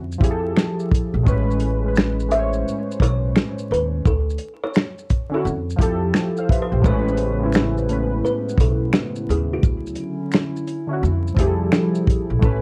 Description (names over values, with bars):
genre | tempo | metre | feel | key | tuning
lo-fi hip hop | 86 BPM | 4/4 | swing 64% on 16ths | A major | A4 = 440 Hz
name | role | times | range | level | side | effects
kalimba | melody | 0.0-12.6 s | F#4 to E5 | -29 LUFS | equal | low-pass filter
upright bass | bass | 0.0-12.6 s | A1 to F2 | -25 LUFS | equal | none
warm soul drum kit | drums | 0.1-12.6 s | finger snaps, hi-hat, kick drum, shaker, snare drum | -21 LUFS | equal | vintage 12-bit sampler grit
warbly lo-fi synth keys | accompaniment | 0.2-12.6 s | A2 to F5 | -26 LUFS | equal | chorus, low-pass filter
hollow soft pad | sustained chords | 6.8-12.6 s | B2 to E4 | -31 LUFS | equal | chorus, low-pass filter
finger snap | percussion | 7.5-11.9 s | none | -42 LUFS | equal | none
room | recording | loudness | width
light reverb | dark, warm production, vinyl crackle | -21 LUFS | mono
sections
0.0-6.8 A section; 6.8-12.6 A section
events
none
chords
0.0 Fmaj9; 1.3 Amaj9; 4.1 Dmaj7(no3); 5.4 Fmaj9; 6.8 Amaj9; 9.6 Dmaj9; 11.0 Fmaj9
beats
0.56 | 1.26 1.96 2.66 3.35 | 4.05 4.75 5.45 6.15 | 6.84 7.54 8.24 8.94 | 9.63 10.33 11.03 11.73 | 12.43